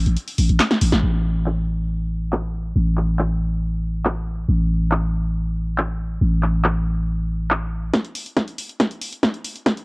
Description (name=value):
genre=driving peak-time techno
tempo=139 BPM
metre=4/4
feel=straight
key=unclear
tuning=A4 = 440 Hz
part: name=growling 808-style bass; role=bass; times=0.0-7.9 s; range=A1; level=-20 LUFS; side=equal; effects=tube saturation, sidechain pumping, low-pass filter
part: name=punchy analog drum machine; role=drums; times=0.1-9.8 s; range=crash cymbal, handclaps, hi-hat, snare drum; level=-21 LUFS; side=equal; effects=overdrive, sidechain pumping on hats, low-pass filter on hats, studio reverb, cassette tape, low-pass filter on snare, sidechain pumping on cymbals, low-pass filter on cymbals
part: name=electronic kick drum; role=drums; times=7.9-9.8 s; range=none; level=-23 LUFS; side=equal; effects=overdrive, high-pass filter on kick, studio reverb, cassette tape
room=little or no reverb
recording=home recording on cassette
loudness=-19 LUFS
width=side -31 dB against mid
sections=0.0-1.0 A section; 1.0-7.9 B section; 7.9-9.8 C section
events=kick drops out 0.2-1.0; drum fill 0.6-1.0, 7.9-9.8; band accent 0.9; build-up 7.9-9.8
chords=none